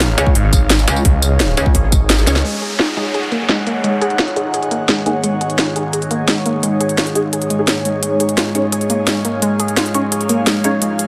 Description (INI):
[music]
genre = dark technical drum and bass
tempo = 172 BPM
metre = 4/4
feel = straight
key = G# dorian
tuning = A4 = 438 Hz
[part]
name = phased detuned saw bass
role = bass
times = 0.0-2.4 s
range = G#1 to C#2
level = -18 LUFS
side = equal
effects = phaser, tube saturation, sidechain pumping
[part]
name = drum and bass drum kit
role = drums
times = 0.0-11.1 s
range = hi-hat, snare drum, tambourine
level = -19 LUFS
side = equal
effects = low-pass filter on hats, studio reverb, low-pass filter on perc, low-pass filter on snare
[part]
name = airy breathy pad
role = texture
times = 0.0-11.1 s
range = D#4 to F#5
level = -24 LUFS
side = equal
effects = chorus, phaser, sidechain pumping
[part]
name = filtered dub chord stab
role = stabs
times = 0.2-10.7 s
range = G#3 to C#5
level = -26 LUFS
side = equal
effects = phaser, ensemble chorus, dub echo
[part]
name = metallic wobble bass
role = bass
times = 0.2-1.7 s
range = C#2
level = -18 LUFS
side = equal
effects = chorus
[part]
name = electronic kick drum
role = drums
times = 0.3-2.0 s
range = none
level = -15 LUFS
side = equal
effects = studio reverb
[part]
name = deep dark ambient pad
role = sustained chords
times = 4.6-11.1 s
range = G#3 to F#5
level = -25 LUFS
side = equal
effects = chorus, built-in reverb, sidechain pumping
[part]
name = soft round pluck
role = arpeggios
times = 2.4-11.1 s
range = G#3 to G#4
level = -23 LUFS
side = equal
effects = chorus, sidechain pumping, dub echo
[part]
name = downlifter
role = sound effects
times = 2.4-5.2 s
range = none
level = -28 LUFS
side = equal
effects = none
[sound]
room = moderate plate reverb, RT60 1.8 s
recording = dense, heavily limited modern master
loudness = -16 LUFS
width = mono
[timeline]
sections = 0.0-2.4 A section; 2.4-11.1 B section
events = band accent 2.1; drum fill 2.3; filter sweep on ambient pad 2.4-11.1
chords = 0.0 C#; 2.4 G#m7; 8.0 C#